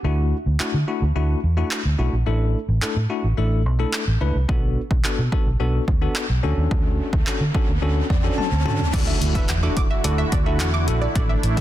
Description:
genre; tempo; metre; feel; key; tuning
dance-pop; 108 BPM; 4/4; straight; D major; A4 = 440 Hz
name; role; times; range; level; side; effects
bell-like tine electric piano; accompaniment; 0.0-11.6 s; A3 to A5; -27 LUFS; left 4 dB; medium stereo tremolo, sidechain pumping
vintage muted fingered electric bass; bass; 0.0-11.6 s; A1 to D3; -21 LUFS; equal; sidechain pumping
punchy analog drum machine; drums; 0.6-11.6 s; crash cymbal, handclaps, hi-hat, kick drum, toms; -23 LUFS; equal; overdrive
riser and impact; sound effects; 6.1-11.2 s; none; -32 LUFS; right 1 dB; none
soft supersaw; sustained chords; 8.9-11.6 s; D3 to F#4; -27 LUFS; right 1 dB; sidechain pumping
analog pluck; arpeggios; 8.9-11.6 s; D5 to D6; -30 LUFS; right 4 dB; chorus, sidechain pumping, ping-pong delay
room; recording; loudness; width
little or no reverb; dense, heavily limited modern master; -19 LUFS; side -13 dB against mid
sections
0.0-8.9 A section; 8.9-11.6 B section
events
riser 6.1-8.9; tine electric piano fill 7.8-8.9; drum fill 8.4-8.9; impact 8.9-11.2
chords
0.0 Dadd9; 2.3 Asus4; 4.5 Bm7; 6.4 Dmaj7; 8.9 Dadd9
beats
| 0.04 0.60 1.16 1.71 | 2.27 2.82 3.38 3.93 | 4.49 5.04 5.60 6.16 | 6.71 7.27 7.82 8.38 | 8.93 9.49 10.04 10.60 | 11.16

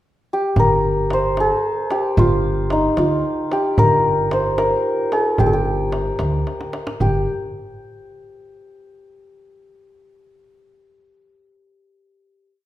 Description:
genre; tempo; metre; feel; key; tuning
Persian modal ensemble; 75 BPM (dotted quarters); 6/8; straight; G dastgah shur; A4 = 440 Hz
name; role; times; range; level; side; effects
santur; melody; 0.3-7.4 s; Eb4 to C5; -18 LUFS; equal; none
upright bass; bass; 0.6-7.2 s; G1 to D2; -22 LUFS; equal; none
tombak; percussion; 0.6-7.2 s; none; -24 LUFS; right 1 dB; none
room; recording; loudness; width
moderate recital hall reverb, RT60 1.6 s; minimal, uncompressed stereo recording; -16 LUFS; side -14 dB against mid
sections
0.0-0.6 pickup bar; 0.6-7.0 A section; 7.0-8.6 final note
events
drum fill 6.5-7.0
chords
none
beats
| 0.56 1.36 | 2.17 2.97 | 3.78 4.58 | 5.39 6.19 | 7.00

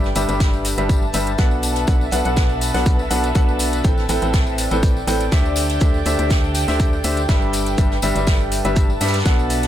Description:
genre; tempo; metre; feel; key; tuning
piano house; 122 BPM; 4/4; swing 53% on 16ths; unclear; A4 = 439 Hz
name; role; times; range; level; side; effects
clear upright piano; riff; 0.0-9.7 s; A2 to G5; -22 LUFS; equal; sidechain pumping, digital delay
organ-like FM bass; bass; 0.0-9.7 s; G1 to G2; -23 LUFS; equal; sidechain pumping
unplugged drum kit; drums; 0.0-9.7 s; hi-hat, shaker, snare drum; -30 LUFS; right 1 dB; high-pass filter on hats, high-pass filter on snare, high-pass filter on perc, high-pass filter on room
tambourine; percussion; 0.0-9.7 s; none; -32 LUFS; left 5 dB; none
airy breathy pad; texture; 0.0-9.7 s; A4 to A5; -27 LUFS; equal; chorus, phaser, sidechain pumping
electronic hi-hat; drums; 0.2-9.7 s; none; -29 LUFS; right 1 dB; overdrive
electronic kick drum; drums; 0.4-9.4 s; none; -17 LUFS; equal; none
room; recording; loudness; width
light reverb, small room ambience; none; -16 LUFS; side -11 dB against mid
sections
0.0-9.7 A section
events
none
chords
0.0 G6; 1.6 Bm7; 3.8 Am9; 5.6 D9sus4; 7.5 G6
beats
0.40 0.89 1.39 | 1.88 2.37 2.86 3.35 | 3.85 4.34 4.83 5.32 | 5.81 6.30 6.80 7.29 | 7.78 8.27 8.76 9.26

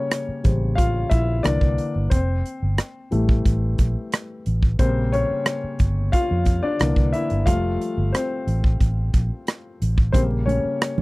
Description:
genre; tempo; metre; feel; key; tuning
lush 1970s-style soul; 90 BPM; 4/4; straight; F major; A4 = 440 Hz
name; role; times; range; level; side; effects
warm grand piano; accompaniment; 0.0-11.0 s; Db3 to F5; -24 LUFS; left 2 dB; none
modern studio drum kit; drums; 0.1-11.0 s; hi-hat, kick drum, rim click; -20 LUFS; equal; none
vintage muted fingered electric bass; bass; 0.3-11.0 s; F1 to F2; -22 LUFS; equal; none
congas; percussion; 10.1-11.0 s; none; -26 LUFS; right 4 dB; none
room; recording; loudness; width
little or no reverb; dry, close 1970s-style studio recording; -19 LUFS; side -22 dB against mid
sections
0.0-11.0 A section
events
grand piano solo 0.0-11.0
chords
0.0 Bbm6; 1.5 C9; 2.1 Fmaj9 (rootless); 4.8 Bbm6; 6.8 C9; 7.5 Fadd9; 10.1 Bbm6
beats
0.11 0.78 1.45 | 2.12 2.79 3.46 4.13 | 4.80 5.46 6.13 6.80 | 7.47 8.14 8.81 9.47 | 10.14 10.81

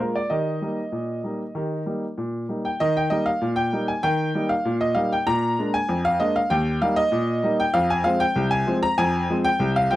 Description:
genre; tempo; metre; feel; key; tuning
ragtime piano; 97 BPM; 2/4; straight; Eb major; A4 = 440 Hz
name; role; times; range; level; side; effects
clear baby grand piano; solo; 0.0-10.0 s; C2 to Bb5; -20 LUFS; equal; none
room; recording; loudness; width
little or no reverb; dry, close 1970s-style studio recording; -20 LUFS; side -15 dB against mid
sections
0.0-2.8 A section; 2.8-10.0 B section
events
none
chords
0.3 Eb; 5.3 Bb7; 6.5 Eb; 7.8 Fm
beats
| 0.31 0.93 | 1.55 2.18 | 2.80 3.42 | 4.04 4.66 | 5.28 5.90 | 6.51 7.13 | 7.75 8.37 | 8.98 9.60

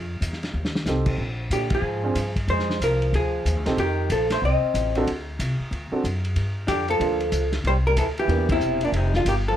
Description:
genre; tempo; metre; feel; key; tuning
jazz, small-group swing and bop; 186 BPM; 4/4; swing 63% on 8ths; F mixolydian; A4 = 440 Hz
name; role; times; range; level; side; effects
upright bass; bass; 0.0-9.6 s; E1 to Bb2; -25 LUFS; equal; none
vintage drum kit; drums; 0.2-9.4 s; crash cymbal, hi-hat, kick drum, ride cymbal, snare drum; -30 LUFS; equal; none
warm baby grand piano; accompaniment; 0.9-8.5 s; Bb3 to A4; -26 LUFS; right 2 dB; none
vintage hollow-body jazz guitar; melody; 1.5-9.6 s; D4 to Eb5; -24 LUFS; left 1 dB; none
warm trombone; second line; 1.5-9.6 s; Bb2 to C4; -31 LUFS; right 2 dB; none
room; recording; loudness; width
light reverb; none; -21 LUFS; side -10 dB against mid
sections
0.0-9.6 A section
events
drum fill 0.5-0.9; band accent 1.7, 8.5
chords
0.0 F7; 1.2 Bb7; 3.8 F7; 5.1 D7; 6.4 Gm7; 7.6 C7; 8.9 F5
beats
0.22 0.54 0.86 | 1.19 1.51 1.83 2.16 | 2.48 2.80 3.13 3.45 | 3.77 4.10 4.42 4.74 | 5.06 5.39 5.71 6.03 | 6.36 6.68 7.00 7.33 | 7.65 7.97 8.29 8.62 | 8.94 9.26

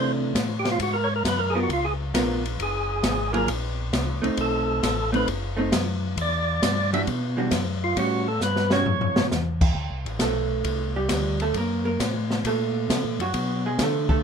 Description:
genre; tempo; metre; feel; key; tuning
soul jazz organ trio; 134 BPM; 4/4; swing 68% on 8ths; unclear; A4 = 440 Hz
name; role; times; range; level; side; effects
percussive tonewheel organ; melody; 0.0-9.3 s; F4 to E5; -25 LUFS; right 1 dB; slow rotary speaker, overdrive
vintage hollow-body jazz guitar; accompaniment; 0.0-14.2 s; E3 to Bb4; -26 LUFS; right 4 dB; none
mellow tonewheel organ; bass; 0.0-14.2 s; F#1 to D3; -28 LUFS; left 1 dB; chorus vibrato, slow rotary speaker
open jazz drum kit; drums; 0.3-14.2 s; crash cymbal, hi-hat, kick drum, ride cymbal, snare drum, toms; -27 LUFS; left 1 dB; none
room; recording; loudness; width
light reverb; minimal, uncompressed stereo recording; -22 LUFS; side -6 dB against mid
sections
0.0-9.8 A section; 9.8-14.2 A section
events
tonewheel organ solo 0.0-9.8; drum fill 8.4-9.3; hollow-body jazz guitar solo 9.8-14.2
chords
0.0 Fmaj13 (rootless); 0.8 G#m7; 1.7 C#6; 2.6 F#add9; 4.4 B7b9; 6.2 Em9; 8.0 A6; 9.8 D7sus4; 11.6 F#dim; 13.3 Bm7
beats
0.35 | 0.80 1.25 1.69 2.14 | 2.59 3.04 3.49 3.94 | 4.38 4.83 5.28 5.73 | 6.18 6.62 7.07 7.52 | 7.97 8.42 8.86 9.31 | 9.76 10.21 10.66 11.10 | 11.55 12.00 12.45 12.90 | 13.35 13.79

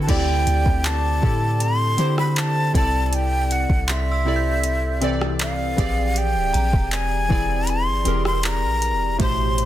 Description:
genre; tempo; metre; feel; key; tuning
contemporary R&B; 79 BPM; 4/4; straight; E minor; A4 = 440 Hz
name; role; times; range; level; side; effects
breathy jazz flute; melody; 0.0-9.7 s; E5 to B#5; -24 LUFS; equal; none
warm analog keys; accompaniment; 0.0-9.7 s; A2 to D5; -26 LUFS; equal; chorus
soft 808-style bass; bass; 0.0-9.7 s; D1 to D3; -22 LUFS; equal; none
synth chime; texture; 0.0-8.8 s; A#5 to G6; -37 LUFS; equal; ensemble chorus, tremolo, digital delay
smooth R&B drum kit; drums; 0.1-9.7 s; crash cymbal, handclaps, hi-hat, kick drum, rim click; -23 LUFS; equal; none
room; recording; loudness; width
little or no reverb; dense, heavily limited modern master; -18 LUFS; side -13 dB against mid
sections
0.1-9.7 A section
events
none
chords
0.1 D9sus4; 2.7 C69; 5.8 E7alt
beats
| 0.09 0.84 1.60 2.36 | 3.12 3.88 4.64 5.40 | 6.16 6.92 7.68 8.44 | 9.20

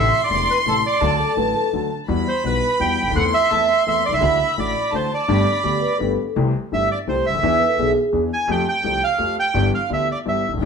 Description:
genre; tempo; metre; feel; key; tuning
tango; 169 BPM; 3/4; rubato; G major, C major from 6.4 s; A4 = 439 Hz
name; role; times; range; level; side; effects
bandoneon; melody; 0.0-10.5 s; A4 to G#5; -20 LUFS; right 3 dB; none
warm chamber violin section; second line; 0.0-6.0, 10.6-10.7 s; G5 to C6; -23 LUFS; left 1 dB; none
warm grand piano; accompaniment; 0.0-10.7 s; E1 to A4; -23 LUFS; left 4 dB; none
upright bass; bass; 0.0-10.7 s; E1 to F2; -26 LUFS; equal; none
vibraphone with soft mallets; second line; 1.2-1.8, 5.6-8.2 s; G4 to B4; -22 LUFS; equal; none
room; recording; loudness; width
wet stone room reverb, RT60 1.0 s; band playing live in one room; -17 LUFS; side -6 dB against mid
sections
0.0-6.4 A section; 6.4-10.7 B section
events
none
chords
0.0 Am; 1.0 D; 2.1 Emadd9; 3.2 Am/E; 4.2 Dadd9; 5.3 Gadd9; 6.4 C6; 7.4 E7; 8.5 Fadd9; 9.5 G6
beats
0.30 0.66 | 1.01 1.37 1.73 | 2.08 2.44 2.80 | 3.15 3.51 3.86 | 4.22 4.57 4.92 | 5.28 5.64 5.99 | 6.35 6.71 7.06 | 7.42 7.77 8.12 | 8.48 8.83 9.19 | 9.55 9.90 10.26 | 10.62

